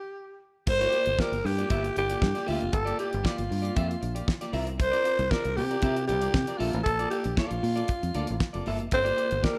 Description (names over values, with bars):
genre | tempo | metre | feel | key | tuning
disco | 116 BPM | 4/4 | straight | G dorian | A4 = 439 Hz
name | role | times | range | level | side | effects
growling alto saxophone | melody | 0.0-9.6 s | F4 to C5 | -30 LUFS | equal | none
clean electric guitar | accompaniment | 0.7-9.6 s | Bb3 to E5 | -37 LUFS | equal | vibrato effect
fingered electric bass | bass | 0.7-9.4 s | F1 to C3 | -33 LUFS | equal | none
damped 70s drum kit | drums | 0.7-9.6 s | crash cymbal, hi-hat, kick drum, snare drum | -32 LUFS | equal | none
room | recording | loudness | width
light reverb | none | -27 LUFS | mono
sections
0.7-9.6 A section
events
break 0.0-0.7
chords
0.0 N.C.; 0.7 Gm7; 4.5 C9sus4; 6.6 Bbmaj7; 8.9 Gm7